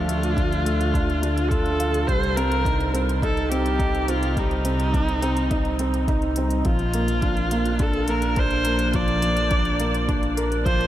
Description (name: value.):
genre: piano and strings electronica.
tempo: 105 BPM.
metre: 4/4.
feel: straight.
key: unclear.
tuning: A4 = 441 Hz.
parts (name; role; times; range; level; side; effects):
rich viola; melody; 0.0-10.9 s; Eb4 to D5; -26 LUFS; equal; tape echo.
felt-muted upright piano; riff; 0.0-10.9 s; F3 to F5; -25 LUFS; equal; tape echo.
dark detuned saw bass; bass; 0.0-10.9 s; Bb1 to D2; -25 LUFS; equal; sidechain pumping.
electronic hi-hat; drums; 0.1-10.9 s; none; -38 LUFS; left 2 dB; none.
electronic kick drum; drums; 0.4-10.8 s; none; -25 LUFS; equal; none.
room: moderate huge ambient reverb, RT60 7.9 s.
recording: dreamy mix soaked in reverb.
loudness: -20 LUFS.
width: side -12 dB against mid.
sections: 0.0-10.9 A section.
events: none.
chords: 0.0 Dm; 2.1 Cm; 6.7 Bb.